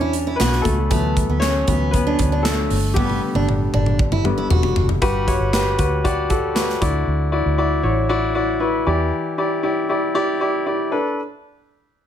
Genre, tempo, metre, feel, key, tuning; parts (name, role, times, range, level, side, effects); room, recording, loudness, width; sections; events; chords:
piano-driven pop; 117 BPM; 4/4; straight; A4 = 435 Hz
clear baby grand piano; accompaniment; 0.0-11.2 s; G2 to D5; -20 LUFS; left 2 dB
picked steel-string acoustic guitar; riff; 0.0-4.9 s; A3 to F#4; -24 LUFS; right 3 dB
vintage muted fingered electric bass; bass; 0.0-9.1 s; E1 to E2; -22 LUFS; right 1 dB
modern studio drum kit; drums; 0.1-6.9 s; handclaps, hi-hat, kick drum, snare drum, toms; -22 LUFS; equal
light reverb, studio ambience; -17 LUFS; side -10 dB against mid
0.0-5.0 A section; 5.0-12.1 B section
grand piano solo 0.0-5.0; drum fill 3.0-5.0
0.0 Esus2; 0.9 D6; 2.7 G; 5.0 Gmaj7; 6.8 Dadd9; 8.9 Em7; 10.9 Bm7